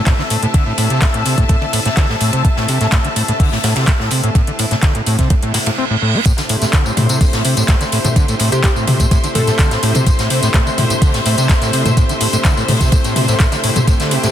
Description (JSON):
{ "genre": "acid house", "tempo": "126 BPM", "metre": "4/4", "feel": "straight", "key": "A minor", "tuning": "A4 = 440 Hz", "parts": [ { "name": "lush unison pad", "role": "sustained chords", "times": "0.0-14.3 s", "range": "C3 to E5", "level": "-22 LUFS", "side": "equal", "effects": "chorus, sidechain pumping" }, { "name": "bright studio string section", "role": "texture", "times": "0.0-14.3 s", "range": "A3 to A5", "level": "-24 LUFS", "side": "left 2 dB", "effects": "sidechain pumping" }, { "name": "overdriven acid bass", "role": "riff", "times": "0.1-14.3 s", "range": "A2 to C4", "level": "-17 LUFS", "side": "equal", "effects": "distortion, tube saturation, analog chorus, dub echo" }, { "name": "electro analog drum machine", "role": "drums", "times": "0.1-14.3 s", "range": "handclaps, hi-hat, tambourine, toms", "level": "-19 LUFS", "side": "left 2 dB", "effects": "none" }, { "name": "electronic kick drum", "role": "drums", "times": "0.1-14.0 s", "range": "none", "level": "-13 LUFS", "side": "equal", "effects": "overdrive" }, { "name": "open jazz drum kit", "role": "drums", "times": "0.1-14.3 s", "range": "hi-hat, ride cymbal, snare drum", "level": "-25 LUFS", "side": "right 2 dB", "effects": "high-pass filter on cymbals, high-pass filter on hats, soft clipping on snare, high-pass filter on snare, high-pass filter on room" }, { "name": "reverse cymbal", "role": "sound effects", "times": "5.5-6.3 s", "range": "none", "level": "-22 LUFS", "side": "right 7 dB", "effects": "none" }, { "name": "plucky unison lead", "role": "melody", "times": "8.5-9.8 s", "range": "G4 to A4", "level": "-24 LUFS", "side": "left 1 dB", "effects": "tape echo" } ], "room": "small room reverb", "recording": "dense, heavily limited modern master", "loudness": "-12 LUFS", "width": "side -10 dB against mid", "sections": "0.0-6.3 A section; 6.3-14.3 B section", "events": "reverse cymbal 5.5-6.3; drop 6.3-14.3", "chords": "0.0 Am" }